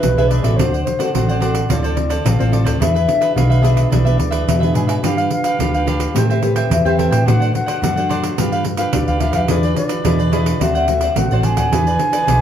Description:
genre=samba and choro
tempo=108 BPM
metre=4/4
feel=straight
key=unclear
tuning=A4 = 444 Hz
part: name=baroque flute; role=second line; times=0.0-12.4 s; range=B4 to G#5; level=-21 LUFS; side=left 1 dB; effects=none
part: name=cavaquinho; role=accompaniment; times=0.0-12.4 s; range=D4 to G5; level=-24 LUFS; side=right 2 dB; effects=none
part: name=nylon-string guitar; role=accompaniment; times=0.0-12.4 s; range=A2 to C5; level=-21 LUFS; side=left 2 dB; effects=none
part: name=hollow-body short-scale fingered electric bass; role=bass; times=0.0-12.4 s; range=A1 to A2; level=-18 LUFS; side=equal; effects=none
part: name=pandeiro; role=percussion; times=0.0-12.4 s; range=none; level=-22 LUFS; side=right 2 dB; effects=none
room=wet small room reverb, RT60 0.5 s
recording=heard from further back in the room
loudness=-14 LUFS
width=side -9 dB against mid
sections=0.0-12.4 A section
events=flute solo 0.0-12.4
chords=0.0 E7; 0.6 D7; 1.7 Dm9; 2.8 E7; 5.0 G7; 6.2 Am9; 7.3 D7/A; 8.4 G7; 9.5 E7b9; 10.6 D7; 11.7 E7b13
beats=0.03 | 0.58 1.14 1.70 2.25 | 2.81 3.37 3.92 4.48 | 5.04 5.59 6.15 6.71 | 7.26 7.82 8.38 8.94 | 9.49 10.05 10.61 11.16 | 11.72 12.28

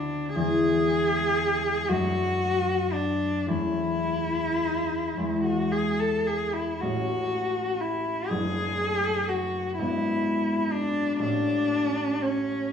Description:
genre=classical, romantic duo for cello and harp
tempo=35-43 BPM (dotted quarters)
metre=6/8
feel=rubato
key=A major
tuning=A4 = 440 Hz
part: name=warm cello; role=melody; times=0.0-12.7 s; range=C#4 to A4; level=-26 LUFS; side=left 1 dB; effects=none
part: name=concert harp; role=accompaniment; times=0.0-12.7 s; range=F#1 to D4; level=-28 LUFS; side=equal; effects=none
room=wet recital hall reverb, RT60 1.5 s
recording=small room ambience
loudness=-24 LUFS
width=side -7 dB against mid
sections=0.0-12.7 A section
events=none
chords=0.4 E; 1.9 D/F#; 3.5 A/E; 5.2 E; 6.8 A; 8.3 D/F#; 9.8 E7/G#; 11.2 A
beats=| 0.37 1.90 | 3.49 5.17 | 6.83 8.32 | 9.81 11.23

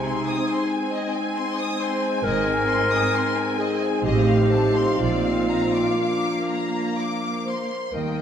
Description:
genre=classical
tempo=60-68 BPM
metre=3/4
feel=rubato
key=unclear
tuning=A4 = 440 Hz
part: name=rich symphonic violin section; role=melody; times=0.0-8.2 s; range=F5 to Ab5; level=-32 LUFS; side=left 4 dB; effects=none
part: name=dark clarinet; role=second line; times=0.0-8.2 s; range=Eb4 to C5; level=-24 LUFS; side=left 1 dB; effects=none
part: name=warm symphonic violin section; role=second line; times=0.0-8.2 s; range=D5 to Eb6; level=-30 LUFS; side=left 2 dB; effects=none
part: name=rich symphonic viola section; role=accompaniment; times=0.0-8.2 s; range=Bb3 to C4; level=-29 LUFS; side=right 4 dB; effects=none
part: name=mellow French horn section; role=sustained chords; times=0.0-8.2 s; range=F3 to Eb4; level=-28 LUFS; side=left 2 dB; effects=none
part: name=clear symphonic cello section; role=bass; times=0.0-8.2 s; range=Ab2 to Eb3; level=-26 LUFS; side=right 3 dB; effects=none
part: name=warm symphonic double bass section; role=bass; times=0.0-8.2 s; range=Ab1 to Eb2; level=-30 LUFS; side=right 4 dB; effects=none
room=wet concert hall reverb, RT60 1.7 s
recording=none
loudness=-20 LUFS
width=side -8 dB against mid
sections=0.0-8.2 A section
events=none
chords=0.0 Ab/C; 2.2 Ab; 4.0 F7/A; 5.0 Bb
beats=0.47 1.35 | 2.24 3.14 4.05 | 4.99 5.98 6.96 | 7.93

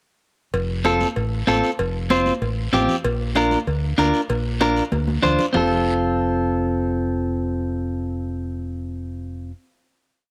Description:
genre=latin, cumbia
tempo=192 BPM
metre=4/4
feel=straight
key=F major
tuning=A4 = 439 Hz
part: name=fingered electric bass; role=bass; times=0.5-9.5 s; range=F1 to D2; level=-27 LUFS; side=equal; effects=none
part: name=congas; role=percussion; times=0.5-5.6 s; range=none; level=-31 LUFS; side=equal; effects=none
part: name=cowbell and timbales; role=percussion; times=0.5-5.6 s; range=none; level=-32 LUFS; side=equal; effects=none
part: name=guiro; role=percussion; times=0.5-5.6 s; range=none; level=-39 LUFS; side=equal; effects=none
part: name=clean electric guitar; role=accompaniment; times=0.8-9.5 s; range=C4 to C5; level=-23 LUFS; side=equal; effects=cassette tape
room=moderate spring reverb, RT60 1.8 s, studio reverb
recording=home recording on cassette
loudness=-22 LUFS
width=mono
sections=0.5-5.5 groove; 5.5-8.1 final chord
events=drum fill 4.9-5.5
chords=0.5 F; 3.0 Bb; 5.5 F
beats=| 0.53 0.85 1.16 1.48 | 1.79 2.10 2.42 2.73 | 3.04 3.36 3.67 3.98 | 4.29 4.61 4.92 5.23 | 5.54 5.86 6.17 6.48 | 6.80 7.11 7.42 7.74

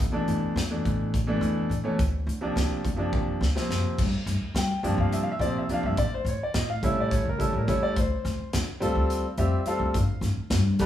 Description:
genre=electric jazz fusion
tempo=211 BPM (eighths)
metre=7/8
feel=straight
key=G dorian from 4.0 s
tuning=A4 = 440 Hz
part: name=upright bass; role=bass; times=0.0-10.9 s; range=G1 to G3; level=-27 LUFS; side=equal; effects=none
part: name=modern studio drum kit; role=drums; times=0.0-10.9 s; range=crash cymbal, hi-hat, kick drum, snare drum, toms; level=-30 LUFS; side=equal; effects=none
part: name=clear grand piano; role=accompaniment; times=0.1-10.9 s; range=B2 to G5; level=-27 LUFS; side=equal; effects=none
room=moderate large studio reverb, RT60 1.2 s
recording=band playing live in one room, studio reverb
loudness=-24 LUFS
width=side -11 dB against mid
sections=0.0-4.0 A section; 4.0-10.9 B section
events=drum fill 3.1-4.0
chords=0.0 E7sus4; 2.0 D7alt; 4.0 Gm7; 6.0 A7; 8.0 Dm7; 9.9 N.C.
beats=0.28 0.56 0.85 1.13 1.42 1.70 | 1.99 2.27 2.56 2.84 3.13 3.41 3.70 | 3.98 4.26 4.55 4.83 5.12 5.40 5.69 | 5.97 6.25 6.54 6.82 7.11 7.39 7.67 | 7.96 8.24 8.53 8.81 9.10 9.38 9.66 | 9.95 10.23 10.52 10.80

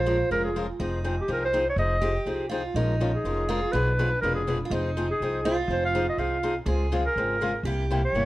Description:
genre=acoustic string swing (jazz manouche)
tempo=245 BPM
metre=4/4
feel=swing 56% on 8ths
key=F minor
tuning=A4 = 443 Hz
part: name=clear clarinet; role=melody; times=0.0-8.3 s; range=G4 to F5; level=-27 LUFS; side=equal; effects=none
part: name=picked steel-string acoustic guitar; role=second line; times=0.0-8.3 s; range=D4 to Ab4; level=-32 LUFS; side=right 3 dB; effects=none
part: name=upright bass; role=bass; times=0.0-8.3 s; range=F1 to Db2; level=-28 LUFS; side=equal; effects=none
part: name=picked steel-string acoustic guitar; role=accompaniment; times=0.1-8.3 s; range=B2 to B4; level=-30 LUFS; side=left 2 dB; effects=none
room=moderate studio reverb, RT60 0.8 s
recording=worn, warbling old tape, cassette tape, warbly pitch drift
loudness=-24 LUFS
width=side -17 dB against mid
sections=0.0-8.3 A section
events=none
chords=0.0 Bbm9; 0.8 Fm9; 2.8 Bbm7; 3.7 Bdim7; 4.7 Fm7; 6.7 Dbmaj7; 7.7 C7b9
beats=0.06 0.30 0.55 | 0.79 1.04 1.28 1.53 | 1.77 2.02 2.26 2.51 | 2.75 3.00 3.24 3.48 | 3.73 3.98 4.22 4.46 | 4.71 4.95 5.20 5.44 | 5.69 5.93 6.18 6.42 | 6.67 6.92 7.16 7.41 | 7.65 7.90 8.14

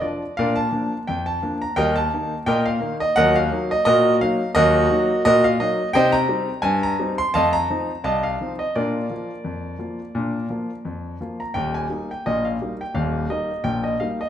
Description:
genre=ragtime piano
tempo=86 BPM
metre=2/4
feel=swing 55% on 16ths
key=Eb major from 6.0 s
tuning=A4 = 437 Hz
part: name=clear concert grand piano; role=solo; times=0.0-14.3 s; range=Eb1 to C6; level=-19 LUFS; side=equal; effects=none
room=wet large studio reverb, RT60 1.4 s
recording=band playing live in one room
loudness=-19 LUFS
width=side -10 dB against mid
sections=0.4-11.6 A section; 11.6-14.3 B section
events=none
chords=0.4 Bb; 1.8 Eb; 3.2 Ebm; 6.0 Cm; 7.3 F7; 8.7 Bb; 11.6 Eb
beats=| 0.38 1.07 | 1.77 2.47 | 3.17 3.87 | 4.56 5.26 | 5.95 6.65 | 7.34 8.04 | 8.74 9.45 | 10.15 10.85 | 11.55 12.25 | 12.95 13.65

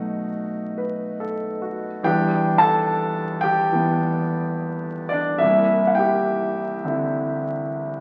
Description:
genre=solo jazz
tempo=71 BPM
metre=4/4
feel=swing 66% on 8ths, rubato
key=unclear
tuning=A4 = 439 Hz
part: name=clear grand piano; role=solo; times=0.0-8.0 s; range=C2 to A5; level=-22 LUFS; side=equal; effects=none
room=wet large studio reverb, RT60 1.2 s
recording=very old 78 rpm record, vinyl crackle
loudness=-22 LUFS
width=mono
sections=0.0-8.0 A section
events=none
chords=0.0 B7; 2.0 Em7; 5.4 C7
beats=0.36 1.20 | 2.04 2.88 3.72 4.57 | 5.42 6.27 7.13 8.00

